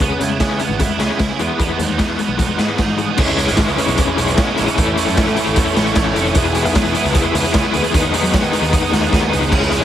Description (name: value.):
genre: indie rock.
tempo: 152 BPM.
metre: 4/4.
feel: straight.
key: unclear.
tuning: A4 = 439 Hz.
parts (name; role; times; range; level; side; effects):
distorted electric guitar; riff; 0.0-9.8 s; E3 to G#4; -20 LUFS; right 8 dB; overdrive, ensemble chorus.
overdriven electric guitar; riff; 0.0-9.8 s; A2 to E4; -20 LUFS; left 7 dB; tremolo.
fuzz picked electric bass; bass; 0.0-9.8 s; E1 to F#3; -22 LUFS; right 1 dB; overdrive.
raw garage drum kit; drums; 0.0-9.8 s; crash cymbal, hi-hat, kick drum, snare drum; -18 LUFS; equal; none.
string machine, cellos; sustained chords; 3.2-9.8 s; A4 to D#6; -28 LUFS; equal; none.
room: moderate studio reverb, RT60 0.5 s.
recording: heavily compressed radio sound.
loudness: -14 LUFS.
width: side -11 dB against mid.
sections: 0.0-3.2 A section; 3.2-9.8 B section.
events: none.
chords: 0.0 C#m7; 1.4 Emaj7; 3.2 C#m7; 4.8 Amaj7; 6.4 E6; 7.9 G#m7/D#.